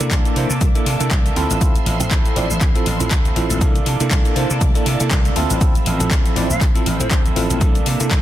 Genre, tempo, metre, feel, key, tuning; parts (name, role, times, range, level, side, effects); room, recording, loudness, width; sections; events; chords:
filtered disco house; 120 BPM; 4/4; swing 57% on 16ths; D minor; A4 = 440 Hz
bell-like tine electric piano; accompaniment; 0.0-8.2 s; F3 to D5; -24 LUFS; right 1 dB; fast stereo tremolo, phaser, sidechain pumping, low-pass filter
phased string machine; sustained chords; 0.0-8.2 s; F3 to D6; -27 LUFS; equal; ensemble chorus, phaser, sidechain pumping, low-pass filter
electric guitar at the edge of break-up; riff; 0.0-8.2 s; E3 to A4; -26 LUFS; right 5 dB; sidechain pumping, low-pass filter
vintage slap bass; bass; 0.0-8.2 s; A1 to C3; -21 LUFS; equal; sidechain pumping, low-pass filter
house drum kit; drums; 0.0-8.2 s; handclaps, hi-hat, shaker; -24 LUFS; left 2 dB; overdrive, sidechain pumping on hats, sidechain pumping on perc
electronic kick drum; drums; 0.1-8.2 s; -17 LUFS; equal
bright reedy concert flute; melody; 6.5-7.2 s; C5 to F5; -29 LUFS; right 1 dB; sidechain pumping, low-pass filter
little or no reverb; dense, heavily limited modern master; -15 LUFS; side -13 dB against mid
0.0-8.2 A section
0.0 C13; 1.4 Dm9; 3.6 C13; 5.4 Dm9; 7.6 C13